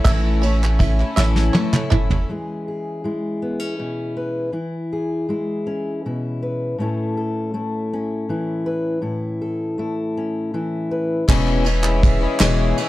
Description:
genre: indie folk with a building arrangement.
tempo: 53 BPM (dotted quarters).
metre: 6/8.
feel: straight.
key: E major.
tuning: A4 = 440 Hz.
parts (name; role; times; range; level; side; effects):
picked twelve-string acoustic guitar; accompaniment; 0.0-2.3, 11.3-12.9 s; E2 to E4; -22 LUFS; left 4 dB; wide subtle chorus.
hand-pumped harmonium; sustained chords; 0.0-2.3, 11.3-12.9 s; E3 to E5; -29 LUFS; equal; none.
bluegrass banjo; arpeggios; 0.0-2.3 s; E4 to E5; -27 LUFS; right 5 dB; none.
soft brush drum kit; drums; 0.0-2.3, 11.3-12.9 s; crash cymbal, kick drum, ride cymbal, snare drum, toms; -20 LUFS; equal; none.
punchy sub bass; bass; 0.1-2.2, 11.3-12.7 s; E1 to A1; -19 LUFS; equal; none.
group handclap; percussion; 0.1-1.9, 11.3-12.6 s; none; -29 LUFS; right 3 dB; none.
fingerpicked steel-string acoustic guitar; accompaniment; 2.3-11.2 s; A2 to B4; -22 LUFS; left 1 dB; none.
room: studio reverb.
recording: dark, warm production.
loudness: -19 LUFS.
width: side -16 dB against mid.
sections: 0.0-2.3 A section; 2.3-11.3 B section; 11.3-12.9 A section.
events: drum fill 1.2-2.3.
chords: 0.0 A; 2.3 E6; 6.8 A; 11.3 E6.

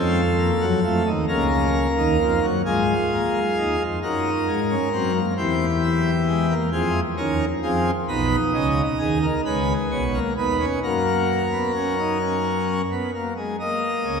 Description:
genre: classical, baroque-style 3-part fugue for pipe organ.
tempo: 44 BPM (dotted quarters).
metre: 6/8.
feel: straight.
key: F# major from 8.1 s.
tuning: A4 = 439 Hz.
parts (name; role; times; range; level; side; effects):
pipe organ, plenum; solo; 0.0-14.2 s; B1 to D#5; -19 LUFS; equal; none.
room: wet church reverb, RT60 3.8 s.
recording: minimal, uncompressed stereo recording.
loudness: -20 LUFS.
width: side -6 dB against mid.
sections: 0.0-2.7 A section; 2.7-13.6 B section.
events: none.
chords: 0.0 F7; 1.3 Bbm/Db; 2.7 Bb5/Ab; 4.0 Ebm/Gb; 5.4 C7/E; 6.7 Fm; 8.1 G#m/B; 10.8 F#; 13.6 F# (rootless).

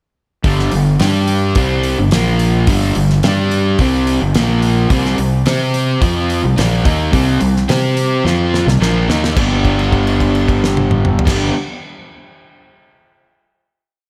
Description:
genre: classic rock.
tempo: 108 BPM.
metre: 4/4.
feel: straight.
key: unclear.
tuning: A4 = 438 Hz.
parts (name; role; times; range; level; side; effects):
crunchy overdriven guitar; riff; 0.4-11.5 s; G2 to C5; -17 LUFS; equal; none.
fuzz fingered electric bass; bass; 0.4-11.5 s; G1 to C3; -20 LUFS; equal; overdrive.
damped 70s drum kit; drums; 0.4-11.4 s; crash cymbal, hi-hat, kick drum, snare drum, toms; -21 LUFS; equal; none.
room: moderate scoring stage reverb, RT60 2.0 s.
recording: big arena sound.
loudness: -14 LUFS.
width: mono.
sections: 0.4-9.4 riff; 9.4-11.6 final chord.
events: drum fill 8.2-9.4; held note 9.4-11.3.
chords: 0.4 G5; 2.1 Bb5; 2.7 G5; 4.3 Bb5; 4.9 C5; 9.4 G.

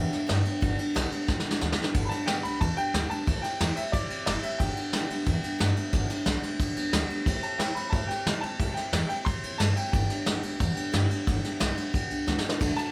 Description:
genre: rockabilly.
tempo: 180 BPM.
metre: 4/4.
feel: straight.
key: G major.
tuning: A4 = 440 Hz.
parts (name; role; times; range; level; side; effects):
clear upright piano; melody; 0.0-12.9 s; D5 to C6; -37 LUFS; equal; none.
picked steel-string acoustic guitar; accompaniment; 0.0-12.9 s; G2 to A4; -36 LUFS; equal; none.
upright bass; bass; 0.0-12.8 s; F1 to C3; -33 LUFS; equal; none.
soft brush drum kit; drums; 0.1-12.9 s; crash cymbal, kick drum, ride cymbal, snare drum; -30 LUFS; equal; none.
room: moderate studio reverb, RT60 0.5 s.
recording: band playing live in one room.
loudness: -28 LUFS.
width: mono.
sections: 0.0-1.9 A section; 1.9-12.9 A section.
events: drum fill 1.3-1.9, 12.3-12.6.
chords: 0.0 G; 3.3 C; 4.6 G; 7.3 C; 9.9 G.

